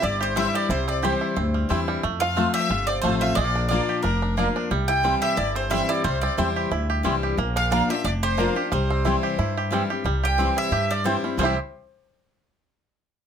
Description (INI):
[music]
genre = bluegrass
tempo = 180 BPM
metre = 4/4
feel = swing 54% on 8ths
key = C mixolydian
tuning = A4 = 445 Hz
[part]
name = mandolin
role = melody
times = 0.0-11.6 s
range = Bb4 to G5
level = -26 LUFS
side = right 2 dB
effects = none
[part]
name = clear fiddle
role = second line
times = 0.0-11.6 s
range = Bb4 to G5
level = -32 LUFS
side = left 7 dB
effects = none
[part]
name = picked steel-string acoustic guitar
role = accompaniment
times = 0.0-11.5 s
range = F2 to F4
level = -27 LUFS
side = left 5 dB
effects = none
[part]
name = bluegrass banjo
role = arpeggios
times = 0.0-11.6 s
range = G3 to G4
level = -28 LUFS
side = right 6 dB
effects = none
[part]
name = upright bass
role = bass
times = 0.0-11.5 s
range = F1 to G2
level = -26 LUFS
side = equal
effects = none
[part]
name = mandolin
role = stabs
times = 0.4-11.5 s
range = Bb3 to Bb5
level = -28 LUFS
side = right 2 dB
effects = none
[sound]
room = light reverb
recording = close, detailed microphones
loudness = -21 LUFS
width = side -8 dB against mid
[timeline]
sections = 0.0-10.1 A section; 10.1-11.4 B section; 11.4-12.7 C section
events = none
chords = 0.0 C; 2.0 F; 3.4 Bb; 4.7 C; 7.4 Bb; 8.7 C